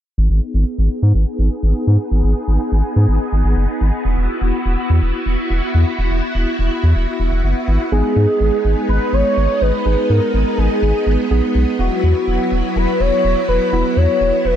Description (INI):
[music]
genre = synth-pop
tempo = 124 BPM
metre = 4/4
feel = straight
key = G# minor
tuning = A4 = 442 Hz
[part]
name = string machine, violins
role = sustained chords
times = 0.2-14.6 s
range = F#3 to G#4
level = -21 LUFS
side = equal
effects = ensemble chorus, low-pass filter
[part]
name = round analog bass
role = bass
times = 0.2-14.6 s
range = E1 to G#2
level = -15 LUFS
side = equal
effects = none
[part]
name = warm velvety synth lead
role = melody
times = 7.9-14.6 s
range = F#4 to C#5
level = -18 LUFS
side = equal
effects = chorus, analog delay
[part]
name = muted felt-like synth keys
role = accompaniment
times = 7.9-14.6 s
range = B3 to G#4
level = -23 LUFS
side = right 3 dB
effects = chorus
[sound]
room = light reverb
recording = dark, warm production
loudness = -14 LUFS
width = side -10 dB against mid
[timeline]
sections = 0.2-7.9 A section; 7.9-14.6 B section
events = filter sweep on string machine 0.2-7.9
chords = 0.2 G#m; 4.1 Esus2; 7.9 G#m; 11.8 Esus2